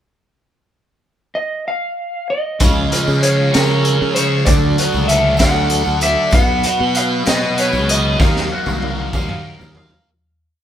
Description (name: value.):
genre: psychedelic rock.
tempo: 64 BPM (dotted quarters).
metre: 6/8.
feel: straight.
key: unclear.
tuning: A4 = 440 Hz.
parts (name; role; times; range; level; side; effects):
electric slide guitar; melody; 1.4-9.7 s; Bb4 to F#5; -20 LUFS; equal; none.
combo organ; sustained chords; 2.6-10.0 s; F3 to F5; -26 LUFS; right 1 dB; none.
thick fuzz guitar; riff; 2.6-10.1 s; Db3 to F5; -19 LUFS; equal; distortion, phaser.
fuzz fingered electric bass; bass; 2.6-9.9 s; B1 to Db3; -19 LUFS; equal; overdrive.
raw garage drum kit; drums; 2.6-10.0 s; hi-hat, kick drum, snare drum, toms; -18 LUFS; equal; none.
tambourine; percussion; 2.6-10.0 s; none; -34 LUFS; right 2 dB; none.
room: light reverb.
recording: band playing live in one room.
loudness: -13 LUFS.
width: side -10 dB against mid.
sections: 0.7-2.6 pickup bar; 2.6-10.1 pre-chorus.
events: fade-out 8.2-10.1; drum fill 8.2-10.1.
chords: 0.7 N.C.; 2.6 Db; 4.5 D; 6.3 B; 8.2 Ebmadd9.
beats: | 0.74 1.67 | 2.61 3.54 | 4.47 5.40 | 6.33 7.27 | 8.20 9.13.